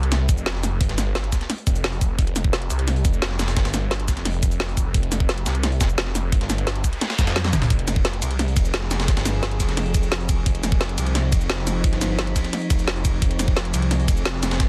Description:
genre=dark technical drum and bass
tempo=174 BPM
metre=4/4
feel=straight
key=F minor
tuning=A4 = 441 Hz
part: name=snarling distorted saw bass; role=bass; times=0.0-14.7 s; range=F1 to F2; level=-26 LUFS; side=equal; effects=distortion, overdrive
part: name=drum and bass drum kit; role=drums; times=0.0-14.7 s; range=hi-hat, ride cymbal, shaker, snare drum, toms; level=-28 LUFS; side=equal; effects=none
part: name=breakbeat sampler-style drum kit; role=drums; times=0.1-14.7 s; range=hi-hat, snare drum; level=-34 LUFS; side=equal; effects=high-pass filter on hats, high-pass filter on snare
part: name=electronic kick drum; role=drums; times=0.3-14.7 s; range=none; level=-23 LUFS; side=equal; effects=none
part: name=noise sweep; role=sound effects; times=6.8-7.7 s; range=none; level=-37 LUFS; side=equal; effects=none
part: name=metallic inharmonic drone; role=sustained chords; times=8.5-14.7 s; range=F3 to Ab4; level=-32 LUFS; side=equal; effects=chorus, built-in reverb, sidechain pumping
room=little or no reverb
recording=dense, heavily limited modern master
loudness=-22 LUFS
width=mono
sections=0.0-14.7 A section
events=noise sweep 6.8-7.7; drum fill 7.4-7.7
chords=0.0 Fm

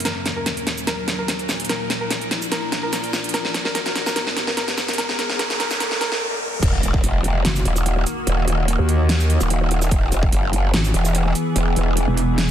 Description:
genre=heavy wobble dubstep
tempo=146 BPM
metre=4/4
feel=half-time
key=Eb phrygian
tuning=A4 = 440 Hz
part: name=felt-muted upright piano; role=melody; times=0.0-6.2 s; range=Bb4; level=-27 LUFS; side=equal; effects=ping-pong delay
part: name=evolving wavetable pad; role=sustained chords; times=0.0-12.5 s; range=Eb2 to G#4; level=-27 LUFS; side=left 1 dB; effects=chorus, built-in reverb, sidechain pumping
part: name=big-room dance drum kit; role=drums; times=0.0-12.5 s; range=crash cymbal, hi-hat, shaker, snare drum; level=-23 LUFS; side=equal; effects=high-pass filter on snare, studio reverb, high-pass filter on hats, high-pass filter on perc, high-pass filter on cymbals
part: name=riser, noise sweep and impact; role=sound effects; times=0.0-8.3 s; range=none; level=-29 LUFS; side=equal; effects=none
part: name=growl bass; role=bass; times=6.6-12.1 s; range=Eb1 to Gb1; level=-19 LUFS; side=equal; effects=chorus, overdrive
part: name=electronic kick drum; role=drums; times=6.6-7.0, 9.9-10.3 s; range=none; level=-20 LUFS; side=equal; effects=studio reverb
part: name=metallic wobble bass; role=bass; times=7.4-12.5 s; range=E1 to Eb2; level=-18 LUFS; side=equal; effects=distortion, chorus, overdrive
room=light reverb, digital ambience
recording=dense, heavily limited modern master, high-pass filter, faint mains hum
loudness=-18 LUFS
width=side -10 dB against mid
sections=0.0-6.6 A section; 6.6-12.5 B section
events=build-up 0.0-6.6; drum fill 0.0-6.2; riser 0.0-6.6; noise sweep 5.0-6.6; break 6.2-6.6; drop 6.6-12.5; impact 6.6-8.3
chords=0.1 Ebm; 1.7 Bb; 3.3 Abm; 5.0 Gb; 5.8 E; 6.6 Ebm; 9.9 E

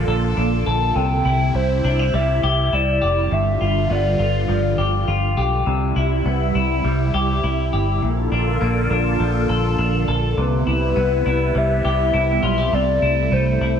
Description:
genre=dream pop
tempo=102 BPM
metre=4/4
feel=straight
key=C major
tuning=A4 = 440 Hz
part: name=phased analog pad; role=sustained chords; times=0.0-13.8 s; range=C3 to A4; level=-24 LUFS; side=right 2 dB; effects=phaser, chorus
part: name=semi-hollow electric guitar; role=arpeggios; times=0.0-13.8 s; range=G2 to A4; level=-23 LUFS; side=left 3 dB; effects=lush chorus, tape echo
part: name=vintage muted fingered electric bass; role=bass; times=0.0-13.8 s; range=F1 to C2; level=-21 LUFS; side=equal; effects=none
part: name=warbly nostalgic lead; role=melody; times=0.7-5.4, 10.4-13.8 s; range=B4 to A5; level=-22 LUFS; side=left 2 dB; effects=chorus, tape echo
room=moderate scoring stage reverb, RT60 1.9 s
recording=none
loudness=-17 LUFS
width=side -8 dB against mid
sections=0.0-13.8 A section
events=none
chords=0.0 Bbmaj7; 1.0 C; 3.3 G7; 5.7 Cmaj7; 8.0 Bbmaj7; 10.4 Cmaj7; 12.7 C6

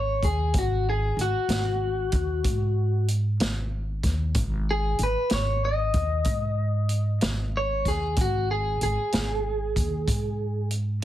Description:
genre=slow blues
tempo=63 BPM (dotted quarters)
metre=12/8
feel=straight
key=unclear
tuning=A4 = 440 Hz
part: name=electric guitar through a small old amp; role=melody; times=0.0-10.7 s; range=F#4 to D#5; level=-27 LUFS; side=left 1 dB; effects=plate reverb
part: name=upright bass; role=bass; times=0.0-11.0 s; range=G#1 to G#2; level=-26 LUFS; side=equal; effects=none
part: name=vintage drum kit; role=drums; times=0.2-10.9 s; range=hi-hat, kick drum, snare drum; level=-28 LUFS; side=equal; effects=none
room=light reverb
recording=heavily compressed radio sound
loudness=-23 LUFS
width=side -13 dB against mid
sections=0.0-11.0 A section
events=none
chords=0.0 G#7(no3)

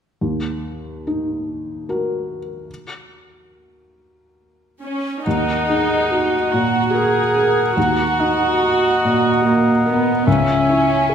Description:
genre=cinematic, emotional film score for orchestra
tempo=72 BPM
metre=3/4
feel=rubato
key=unclear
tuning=A4 = 440 Hz
part: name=felt-muted upright piano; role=accompaniment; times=0.2-11.1 s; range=C#2 to A#4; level=-21 LUFS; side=equal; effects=none
part: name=rich studio viola section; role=accompaniment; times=4.8-11.1 s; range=A#3 to G#4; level=-18 LUFS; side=right 1 dB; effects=none
part: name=warm clarinet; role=second line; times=5.2-11.1 s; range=F#4 to F#5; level=-24 LUFS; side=left 2 dB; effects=none
part: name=clear oboe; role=second line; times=5.3-11.1 s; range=E5 to F#5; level=-22 LUFS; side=right 1 dB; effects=none
part: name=mellow hollow silver concert flute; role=second line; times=5.3-11.1 s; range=G#5 to A#5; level=-25 LUFS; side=left 1 dB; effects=none
room=wet scoring stage reverb, RT60 1.6 s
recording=none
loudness=-15 LUFS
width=side -8 dB against mid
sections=0.2-5.3 A section; 5.3-11.1 B section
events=none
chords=0.2 D#m; 10.3 C#m

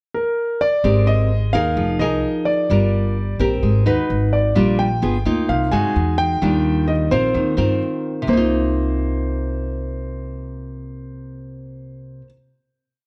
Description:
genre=bossa nova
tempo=129 BPM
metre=4/4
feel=straight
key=C minor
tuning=A4 = 440 Hz
part: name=warm concert grand piano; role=melody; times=0.1-12.2 s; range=Bb4 to Ab5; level=-25 LUFS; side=equal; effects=none
part: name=nylon-string guitar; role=accompaniment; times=0.8-12.4 s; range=Bb2 to B4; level=-23 LUFS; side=equal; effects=none
part: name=upright bass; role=bass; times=0.8-12.2 s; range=F1 to G2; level=-23 LUFS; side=equal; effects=none
room=light reverb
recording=dark, warm production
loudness=-19 LUFS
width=mono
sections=0.0-0.8 pickup bar; 0.8-8.3 A section; 8.3-12.0 final chord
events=none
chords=0.0 N.C.; 0.8 Abmaj9; 1.8 Fm7; 2.7 Gm7; 3.6 Abmaj9; 4.1 Abm7; 4.6 Gm7/Bb; 5.0 G7b9; 5.5 Cm7; 6.0 Emaj9; 6.4 Ebmaj9; 7.3 Cm7/Eb; 8.3 Cm7

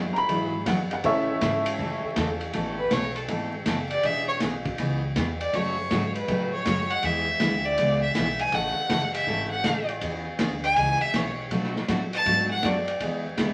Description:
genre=country, western swing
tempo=160 BPM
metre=4/4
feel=swing 66% on 8ths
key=A major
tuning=A4 = 440 Hz
part: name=honky-tonk upright piano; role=accompaniment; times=0.0-2.5 s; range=E3 to B5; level=-28 LUFS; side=equal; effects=none
part: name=picked steel-string acoustic guitar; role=accompaniment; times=0.0-13.5 s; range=B2 to A4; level=-32 LUFS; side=equal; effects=none
part: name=upright bass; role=bass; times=0.0-13.5 s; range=E1 to B2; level=-36 LUFS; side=equal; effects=none
part: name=vintage drum kit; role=drums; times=0.2-13.5 s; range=hi-hat, kick drum, ride cymbal, snare drum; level=-32 LUFS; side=equal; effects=none
part: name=clear fiddle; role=melody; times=2.8-12.9 s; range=A4 to A5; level=-28 LUFS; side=equal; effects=none
room=wet large studio reverb, RT60 0.9 s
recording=vinyl crackle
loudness=-26 LUFS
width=mono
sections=0.0-2.5 A section; 2.5-13.5 A section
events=honky-tonk piano solo 0.0-2.5; fiddle solo 2.5-13.5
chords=0.0 Eadd9; 1.0 A; 2.5 Aadd9; 4.0 E6; 5.5 F#m; 7.0 E; 8.5 A; 10.0 E6; 11.5 Bm7; 13.0 E

